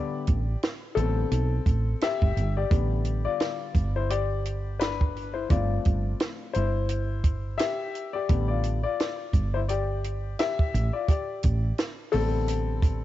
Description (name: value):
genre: hip hop, jazz-hop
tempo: 86 BPM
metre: 4/4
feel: swing 57% on 16ths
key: A minor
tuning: A4 = 440 Hz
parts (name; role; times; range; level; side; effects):
- dark upright piano; accompaniment; 0.0-13.0 s; D3 to E5; -30 LUFS; left 7 dB; cassette tape
- woody fretless electric bass; bass; 0.3-13.0 s; G1 to B1; -27 LUFS; right 1 dB; none
- compact cocktail drum kit; drums; 0.3-13.0 s; hi-hat, kick drum, snare drum; -25 LUFS; right 1 dB; cassette tape
room: small room ambience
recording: home recording on cassette, nothing above 7.9 kHz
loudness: -24 LUFS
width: side -14 dB against mid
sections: 0.0-2.7 A section; 2.7-13.0 A section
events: upright piano solo 0.0-2.7, 2.7-13.0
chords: 0.0 A9sus4; 5.5 G9sus4; 8.3 A9sus4